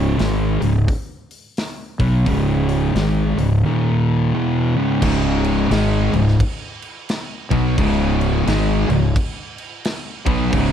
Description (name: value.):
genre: stoner and doom metal.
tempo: 87 BPM.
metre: 4/4.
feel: swing 61% on 8ths.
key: C# minor.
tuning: A4 = 440 Hz.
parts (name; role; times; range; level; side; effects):
thick fuzz guitar; riff; 0.0-10.7 s; C#2 to B3; -20 LUFS; left 7 dB; distortion.
thick fuzz guitar; riff; 0.0-10.7 s; C#2 to B3; -20 LUFS; right 6 dB; distortion.
fuzz fingered electric bass; bass; 0.0-10.7 s; C#1 to B1; -21 LUFS; equal; overdrive.
big rock drum kit; drums; 0.2-10.7 s; crash cymbal, hi-hat, kick drum, snare drum; -25 LUFS; equal; none.
heavy high-gain guitar; riff; 5.0-10.7 s; C#2 to B3; -25 LUFS; equal; distortion.
room: light reverb, small room reverb.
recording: dark, warm production.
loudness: -16 LUFS.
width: side -9 dB against mid.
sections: 0.0-5.0 A section; 5.0-10.7 B section.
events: none.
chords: 0.0 C#5; 3.6 D#5; 4.3 C#m; 5.0 C#5.